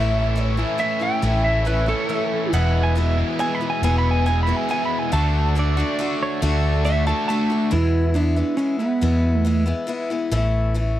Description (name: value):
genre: rock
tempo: 138 BPM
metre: 3/4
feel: straight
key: E mixolydian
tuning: A4 = 440 Hz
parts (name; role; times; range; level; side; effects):
- lightly driven lead guitar; melody; 0.0-9.6 s; A3 to B5; -23 LUFS; right 2 dB; none
- picked steel-string acoustic guitar; accompaniment; 0.0-11.0 s; E2 to F#4; -26 LUFS; left 4 dB; none
- crunchy overdriven guitar; riff; 0.0-7.7 s; E2 to F#4; -25 LUFS; equal; none
- hollow-body short-scale fingered electric bass; bass; 0.0-11.0 s; E1 to E2; -20 LUFS; equal; none
- pedal steel guitar; second line; 2.5-3.2, 5.6-6.7 s; A4 to G#5; -27 LUFS; right 5 dB; none
room: little or no reverb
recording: dry, close 1970s-style studio recording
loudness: -18 LUFS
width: side -13 dB against mid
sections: 0.0-7.7 A section; 7.7-11.0 B section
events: lead electric guitar solo 0.0-7.7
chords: 0.0 A; 2.5 E; 5.1 D; 7.7 E; 10.3 A